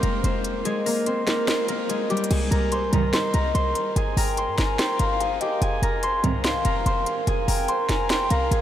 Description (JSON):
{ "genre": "hip hop, trap", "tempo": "145 BPM", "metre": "4/4", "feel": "half-time", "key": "unclear", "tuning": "A4 = 440 Hz", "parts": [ { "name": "concert harp", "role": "melody", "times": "0.0-8.6 s", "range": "G3 to C6", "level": "-24 LUFS", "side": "equal", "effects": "low-pass filter" }, { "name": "short 808-style bass", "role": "bass", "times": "0.0-8.6 s", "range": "F1 to G2", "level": "-24 LUFS", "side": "equal", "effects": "none" }, { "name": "trap drum kit", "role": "drums", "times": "0.0-8.6 s", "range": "crash cymbal, hi-hat, snare drum", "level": "-29 LUFS", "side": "equal", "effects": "none" }, { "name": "dark symphonic string section", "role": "stabs", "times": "2.9-3.1, 6.2-6.4 s", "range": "Ab1 to Eb3", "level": "-32 LUFS", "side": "right 5 dB", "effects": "tape echo" }, { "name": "hollow clarinet-like synth lead", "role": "second line", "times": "3.1-8.6 s", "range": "Eb5 to Ab5", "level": "-29 LUFS", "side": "left 3 dB", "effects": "chorus, tape echo" } ], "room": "wet huge ambient reverb, RT60 7.2 s", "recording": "dreamy mix soaked in reverb", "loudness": "-21 LUFS", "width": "side -11 dB against mid", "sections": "0.0-2.3 A section; 2.3-8.6 B section", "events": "kick muted 0.7-2.3", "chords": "0.0 Fm; 2.3 Cm; 4.0 Gm; 5.6 Fm", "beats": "0.24 | 0.65 1.07 1.48 1.89 | 2.31 2.72 3.13 3.55 | 3.96 4.38 4.79 5.20 | 5.62 6.03 6.45 6.86 | 7.27 7.69 8.10 8.51" }